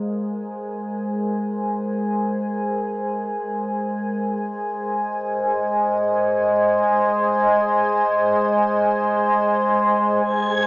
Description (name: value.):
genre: ambient.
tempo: free time.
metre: none.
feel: none.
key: Ab major.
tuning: A4 = 440 Hz.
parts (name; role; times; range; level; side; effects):
evolving wavetable pad; sustained chords; 0.0-10.7 s; Ab3 to Ab5; -18 LUFS; equal; chorus, built-in reverb.
wind-like tuned noise texture; texture; 10.3-10.7 s; Ab4 to Ab6; -22 LUFS; equal; built-in reverb.
room: wet huge ambient reverb, RT60 8.3 s.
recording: small speaker sound.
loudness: -18 LUFS.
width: side -23 dB against mid.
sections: 0.0-10.2 A section.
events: filter sweep on ambient pad 0.0-10.2.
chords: 0.0 Abadd9; 4.2 Ab.